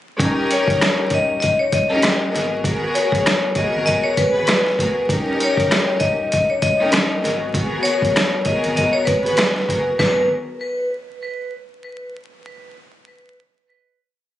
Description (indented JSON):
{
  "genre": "hip hop, boom-bap hip-hop",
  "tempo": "98 BPM",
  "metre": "4/4",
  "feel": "swing 58% on 16ths",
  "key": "G# minor",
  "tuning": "A4 = 442 Hz",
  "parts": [
    { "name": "warm studio string section", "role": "accompaniment", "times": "0.2-10.2 s", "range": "B3 to B4", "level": "-22 LUFS", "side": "equal", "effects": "cassette tape" },
    { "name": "soft dub sub bass", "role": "bass", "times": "0.2-10.3 s", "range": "D#1 to G#1", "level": "-28 LUFS", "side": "equal", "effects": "none" },
    { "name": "boom bap sampler-style drum kit", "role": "drums", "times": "0.2-10.2 s", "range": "hi-hat, kick drum, rim click, snare drum", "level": "-20 LUFS", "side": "equal", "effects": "none" },
    { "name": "vibraphone with hard mallets", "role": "melody", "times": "0.5-10.3 s", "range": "B4 to D#5", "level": "-20 LUFS", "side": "left 2 dB", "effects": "ping-pong delay" }
  ],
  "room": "light reverb",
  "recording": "recorded on a phone in the room, studio ambience, vinyl crackle, compression, nothing above 10.7 kHz",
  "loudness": "-16 LUFS",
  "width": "side -13 dB against mid",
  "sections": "0.2-10.0 verse; 10.0-12.4 final chord",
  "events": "none",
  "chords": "0.2 D#7; 2.3 G#m9; 5.1 D#7; 7.2 G#m9",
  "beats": "| 0.20 0.81 1.42 2.03 | 2.65 3.26 3.87 4.48 | 5.09 5.71 6.32 6.93 | 7.54 8.16 8.77 9.38 | 9.99"
}